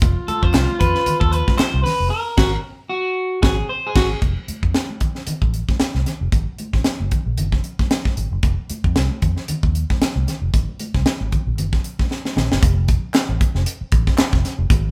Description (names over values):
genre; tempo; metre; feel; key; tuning
funk; 114 BPM; 4/4; swing 56% on 16ths; unclear; A4 = 441 Hz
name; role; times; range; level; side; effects
mellow baritone saxophone; second line; 0.0-4.1 s; F4 to Gb4; -27 LUFS; equal; none
vintage muted fingered electric bass; bass; 0.0-14.9 s; F1 to F2; -24 LUFS; equal; none
crisp fusion drum kit; drums; 0.0-14.8 s; crash cymbal, hi-hat, kick drum, snare drum; -21 LUFS; equal; none
congas; percussion; 0.0-12.5 s; none; -33 LUFS; equal; none
electric guitar at the edge of break-up; accompaniment; 0.3-4.2 s; Gb4 to C5; -24 LUFS; equal; none
group handclap; percussion; 0.5-1.7, 13.1-14.3 s; none; -32 LUFS; equal; none
room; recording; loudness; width
light reverb; band playing live in one room; -20 LUFS; mono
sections
0.0-4.2 A section; 4.2-12.6 B section; 12.6-14.9 C section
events
clean electric guitar solo 0.0-4.2; band accent 2.1-4.2; drum fill 12.1-12.6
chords
0.0 F5; 2.1 Absus2; 4.2 F; 6.3 N.C.; 8.4 F5; 10.5 Ab9; 12.6 F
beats
| 0.02 0.55 1.07 1.59 | 2.12 2.64 3.17 3.69 | 4.22 4.74 5.27 5.80 | 6.33 6.85 7.38 7.91 | 8.43 8.96 9.48 10.01 | 10.53 11.06 11.58 12.10 | 12.62 13.14 13.66 14.18 | 14.70